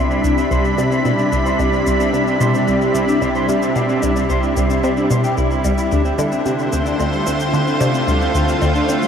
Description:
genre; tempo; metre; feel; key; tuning
ambient, sequencer-driven space music; 111 BPM; 4/4; straight; C major; A4 = 440 Hz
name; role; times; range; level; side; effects
lush unison pad; sustained chords; 0.0-9.1 s; C3 to B5; -18 LUFS; equal; chorus
electric guitar at the edge of break-up; arpeggios; 0.0-9.1 s; G3 to C5; -22 LUFS; left 2 dB; auto-pan, tape echo
analog pluck; riff; 0.0-9.1 s; C2 to D3; -20 LUFS; equal; chorus, phaser, tape echo
shaker and woodblock; percussion; 0.1-9.1 s; none; -32 LUFS; left 2 dB; overdrive, tape echo
room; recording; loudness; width
wet huge ambient reverb, RT60 8.0 s; none; -15 LUFS; side -7 dB against mid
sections
0.0-9.1 A section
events
filter sweep on synth arpeggio sound 0.0-9.1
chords
0.0 Cmaj7; 5.9 Dm7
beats
0.51 1.05 | 1.59 2.13 2.67 3.21 | 3.75 4.29 4.84 5.38 | 5.92 6.46 7.00 7.54 | 8.08 8.62

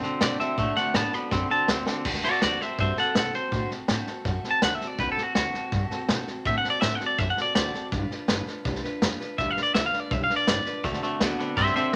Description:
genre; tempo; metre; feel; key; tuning
rockabilly; 164 BPM; 4/4; straight; D mixolydian; A4 = 438 Hz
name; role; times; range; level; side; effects
picked steel-string acoustic guitar; accompaniment; 0.0-11.9 s; D3 to B4; -37 LUFS; equal; none
twangy electric guitar; riff; 0.0-2.0, 10.8-11.9 s; D3 to C4; -31 LUFS; equal; none
upright bass; bass; 0.0-11.8 s; G1 to B2; -35 LUFS; equal; none
vintage drum kit; drums; 0.0-12.0 s; crash cymbal, hi-hat, kick drum, snare drum; -30 LUFS; equal; none
clean electric guitar; melody; 0.2-12.0 s; F#4 to B5; -28 LUFS; equal; none
room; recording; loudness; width
moderate studio reverb, RT60 0.7 s; none; -26 LUFS; mono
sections
0.0-2.1 A section; 2.1-12.0 B section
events
drum fill 1.3-2.1; clean electric guitar solo 2.1-12.0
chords
0.0 D7; 7.9 G7; 10.8 D7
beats
0.21 | 0.58 0.95 1.32 1.69 | 2.06 2.42 2.79 3.16 | 3.53 3.89 4.26 4.63 | 4.99 5.36 5.73 6.09 | 6.46 6.83 7.19 7.56 | 7.92 8.29 8.65 9.02 | 9.38 9.75 10.12 10.48 | 10.84 11.21 11.57 11.94

